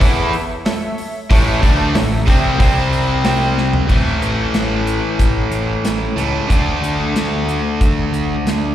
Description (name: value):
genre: classic rock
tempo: 92 BPM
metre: 4/4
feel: straight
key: unclear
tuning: A4 = 440 Hz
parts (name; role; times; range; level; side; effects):
- tack piano; accompaniment; 0.0-3.8 s; G4 to G5; -26 LUFS; right 4 dB; slapback echo
- overdriven electric guitar; riff; 0.0-8.7 s; A2 to E4; -22 LUFS; right 10 dB; slapback echo
- raw garage guitar; riff; 0.0-8.7 s; A2 to E4; -20 LUFS; left 4 dB; overdrive, slapback echo
- fuzz picked electric bass; bass; 0.0-8.7 s; A1 to E2; -20 LUFS; equal; overdrive
- big rock drum kit; drums; 0.0-8.6 s; crash cymbal, hi-hat, kick drum, snare drum, toms; -18 LUFS; equal; none
room: studio reverb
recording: live gig heard through the venue's PA, recital hall reverb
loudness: -14 LUFS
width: side -12 dB against mid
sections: 0.0-3.9 A section; 3.9-8.7 B section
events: drum fill 3.6-3.9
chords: 0.0 A; 2.6 C5; 3.9 A5; 6.5 D5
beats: 0.00 0.65 | 1.30 1.95 2.59 3.24 | 3.89 4.54 5.19 5.84 | 6.50 7.15 7.80 8.46